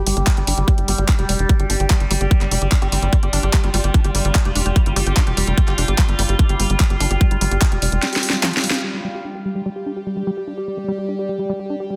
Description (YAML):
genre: psychedelic trance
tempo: 147 BPM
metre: 4/4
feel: straight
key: unclear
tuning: A4 = 439 Hz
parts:
  - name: overtone-sweeping drone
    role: sustained chords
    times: 0.0-12.0 s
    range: G3 to G4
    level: -29 LUFS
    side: equal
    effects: chorus, built-in reverb, sidechain pumping
  - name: liquid acid bass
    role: riff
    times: 0.0-12.0 s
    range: F3 to G4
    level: -30 LUFS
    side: equal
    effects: chorus, sidechain pumping, delay
  - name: tight sequencer bass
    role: bass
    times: 0.0-8.0 s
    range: F1 to G1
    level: -22 LUFS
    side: equal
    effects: none
  - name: deep dark ambient pad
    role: texture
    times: 0.0-12.0 s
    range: G4 to G5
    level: -35 LUFS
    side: equal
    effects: chorus, built-in reverb, sidechain pumping
  - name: garage drum kit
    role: drums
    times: 0.1-12.0 s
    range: handclaps, hi-hat, snare drum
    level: -24 LUFS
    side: equal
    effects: overdrive, low-pass filter on hats, low-pass filter on cymbals, low-pass filter on snare
  - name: electronic kick drum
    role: drums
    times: 0.3-7.7 s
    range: none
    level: -18 LUFS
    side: equal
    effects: overdrive
  - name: metallic wobble bass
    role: second line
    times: 2.8-5.4 s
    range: C4 to G4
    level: -36 LUFS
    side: equal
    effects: distortion, chorus, sidechain pumping, high-pass filter, delay
room: light reverb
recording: dense, heavily limited modern master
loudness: -18 LUFS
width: mono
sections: 0.0-8.8 A section; 8.8-12.0 B section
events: drum fill 8.0-8.8; band accent 8.7; filter sweep on acid bass 8.8-12.0; filter sweep on synth drone 8.8-12.0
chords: 0.0 G5